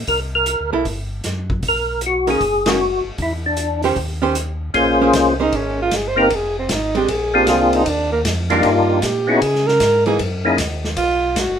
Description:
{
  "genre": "soul jazz organ trio",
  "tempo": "154 BPM",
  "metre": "4/4",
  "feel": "swing 66% on 8ths",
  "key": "Bb dorian from 4.7 s",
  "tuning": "A4 = 440 Hz",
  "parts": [
    { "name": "mellow tonewheel organ", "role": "bass", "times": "0.0-11.6 s", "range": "F1 to Db3", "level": "-25 LUFS", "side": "equal", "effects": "slow rotary speaker" },
    { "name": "percussive tonewheel organ", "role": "melody", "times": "0.1-10.6 s", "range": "Bb3 to C5", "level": "-16 LUFS", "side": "left 2 dB", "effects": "slow rotary speaker, chorus vibrato" },
    { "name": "vintage drum kit", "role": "drums", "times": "0.1-11.5 s", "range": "hi-hat, kick drum, ride cymbal, rim click, snare drum", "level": "-25 LUFS", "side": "left 1 dB", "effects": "none" },
    { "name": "archtop guitar, miked and amplified", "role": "accompaniment", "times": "0.7-10.2 s", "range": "D#3 to C5", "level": "-20 LUFS", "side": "right 5 dB", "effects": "none" },
    { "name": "breathy alto saxophone", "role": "melody", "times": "5.4-11.6 s", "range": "Bb3 to C5", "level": "-18 LUFS", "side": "right 2 dB", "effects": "none" }
  ],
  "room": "moderate club reverb, RT60 0.5 s",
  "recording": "minimal, uncompressed stereo recording",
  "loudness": "-15 LUFS",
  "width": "side -8 dB against mid",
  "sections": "0.0-4.7 A section; 4.7-11.6 B section",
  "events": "band accent 2.6; alto saxophone solo 4.7-11.6",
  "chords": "0.1 C7sus2; 1.6 Bmaj9; 3.2 Em7; 4.0 Eb6; 4.7 Bbm9; 6.3 Fm; 7.1 Bb9; 7.9 Ebmaj9; 9.4 Dbm; 10.2 Gb13; 11.0 Bmaj7(no3)"
}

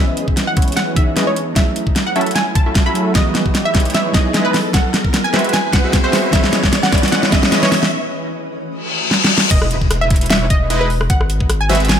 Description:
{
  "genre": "future bass",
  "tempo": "151 BPM",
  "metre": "4/4",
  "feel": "swing 54% on 16ths, half-time",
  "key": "E major",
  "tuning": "A4 = 440 Hz",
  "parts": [
    { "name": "wide unison pluck", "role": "melody", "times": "0.0-12.0 s", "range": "B4 to B5", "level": "-22 LUFS", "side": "right 1 dB", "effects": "sidechain pumping, dub echo" },
    { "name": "glassy digital keys", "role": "accompaniment", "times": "0.0-7.9 s", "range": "E3 to D#5", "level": "-24 LUFS", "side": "right 3 dB", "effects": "chorus, sidechain pumping, digital delay" },
    { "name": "shimmering ambient pad", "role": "sustained chords", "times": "0.1-9.5 s", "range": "E3 to D#5", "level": "-30 LUFS", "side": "equal", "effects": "none" },
    { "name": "supersaw stab", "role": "riff", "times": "0.0-11.9 s", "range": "F#3 to E5", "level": "-22 LUFS", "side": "equal", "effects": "sidechain pumping, low-pass filter" },
    { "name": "riser, reverse cymbal and impact", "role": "sound effects", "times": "0.1-11.1 s", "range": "none", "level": "-23 LUFS", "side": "left 2 dB", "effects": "none" },
    { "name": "dubstep drum kit", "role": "drums", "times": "0.2-12.0 s", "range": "crash cymbal, hi-hat, rim click, snare drum", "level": "-18 LUFS", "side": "equal", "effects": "small room ambience" },
    { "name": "electronic kick drum", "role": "drums", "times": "0.3-11.5 s", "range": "none", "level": "-16 LUFS", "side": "equal", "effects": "small room ambience" },
    { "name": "saturated sub bass", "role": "bass", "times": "9.5-12.0 s", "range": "E1 to G#1", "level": "-18 LUFS", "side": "equal", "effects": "sidechain pumping" }
  ],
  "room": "light reverb",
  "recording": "none",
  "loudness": "-13 LUFS",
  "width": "side -8 dB against mid",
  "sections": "0.0-9.5 A section; 9.5-12.0 B section",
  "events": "build-up 0.0-9.5; drum fill 0.0-7.9, 9.1-9.5; filter sweep on supersaw synth 0.0-9.5; riser 0.1-7.9; break 7.9-9.5; reverse cymbal 8.8-9.5; drop 9.5-12.0; impact 9.5-11.1",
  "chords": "0.0 C#m9; 1.6 F#m7; 3.2 Emaj7; 4.7 G#7alt; 6.3 C#m9; 7.9 F#m7; 9.5 Emaj7; 11.1 G#7alt"
}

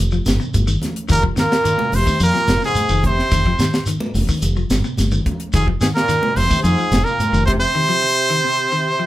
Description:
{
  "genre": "afrobeat",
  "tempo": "108 BPM",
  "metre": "4/4",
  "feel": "straight",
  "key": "F minor",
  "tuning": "A4 = 440 Hz",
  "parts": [
    { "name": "clean electric guitar", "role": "arpeggios", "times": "0.0-9.1 s", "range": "C3 to F3", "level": "-24 LUFS", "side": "left 2 dB", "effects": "none" },
    { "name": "fingered electric bass", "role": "bass", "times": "0.0-7.6 s", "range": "F1 to F2", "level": "-19 LUFS", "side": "equal", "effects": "none" },
    { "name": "shekere", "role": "percussion", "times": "0.1-7.5 s", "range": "none", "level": "-26 LUFS", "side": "right 1 dB", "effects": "none" },
    { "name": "tight funk drum kit", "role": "drums", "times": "0.3-7.6 s", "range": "hi-hat, kick drum, snare drum", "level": "-21 LUFS", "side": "equal", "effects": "none" },
    { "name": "congas", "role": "percussion", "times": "0.3-7.6 s", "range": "none", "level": "-27 LUFS", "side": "equal", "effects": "none" },
    { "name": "clear trumpet", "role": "melody", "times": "1.1-9.1 s", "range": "Ab4 to C5", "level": "-18 LUFS", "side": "right 1 dB", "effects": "none" },
    { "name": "bright trombone section", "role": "second line", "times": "1.1-9.1 s", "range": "Ab2 to C3", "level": "-25 LUFS", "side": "equal", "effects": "none" }
  ],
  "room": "moderate small room reverb, RT60 0.5 s",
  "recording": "band playing live in one room",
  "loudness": "-15 LUFS",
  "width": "side -15 dB against mid",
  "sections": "0.0-9.1 A section",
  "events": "none",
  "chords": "0.0 Cmadd11/F; 1.1 F5; 3.3 Cmadd11/F; 5.5 F5; 7.8 Cmadd11"
}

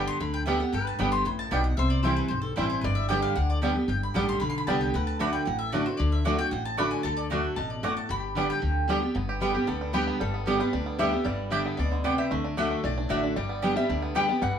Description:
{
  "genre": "bluegrass",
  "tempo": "228 BPM",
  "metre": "4/4",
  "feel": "straight",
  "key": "G major",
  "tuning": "A4 = 443 Hz",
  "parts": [
    { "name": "mandolin", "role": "melody", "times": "0.0-8.9 s", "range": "A4 to D6", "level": "-32 LUFS", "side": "left 1 dB", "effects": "none" },
    { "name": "picked steel-string acoustic guitar", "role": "accompaniment", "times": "0.0-14.6 s", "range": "G2 to G4", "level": "-28 LUFS", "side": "equal", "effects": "none" },
    { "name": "mandolin", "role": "stabs", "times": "0.0-14.3 s", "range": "A3 to G5", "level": "-31 LUFS", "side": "right 2 dB", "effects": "none" },
    { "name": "upright bass", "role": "bass", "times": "0.0-14.6 s", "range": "G1 to D2", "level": "-31 LUFS", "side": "left 1 dB", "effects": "none" },
    { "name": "bluegrass banjo", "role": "melody", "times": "0.5-14.6 s", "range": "D3 to G4", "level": "-34 LUFS", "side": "right 4 dB", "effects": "none" },
    { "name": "lap resonator guitar", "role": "second line", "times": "0.7-14.6 s", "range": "G4 to G5", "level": "-34 LUFS", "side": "left 4 dB", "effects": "none" }
  ],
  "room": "wet studio reverb, RT60 0.6 s",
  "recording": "band playing live in one room",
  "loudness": "-24 LUFS",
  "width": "side -8 dB against mid",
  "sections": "0.0-9.2 A section; 9.2-14.6 B section",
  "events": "resonator guitar played with a steel bar solo 9.2-14.6",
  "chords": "0.0 G; 1.8 C; 2.8 G; 4.9 D; 8.1 G; 12.3 D; 13.4 G"
}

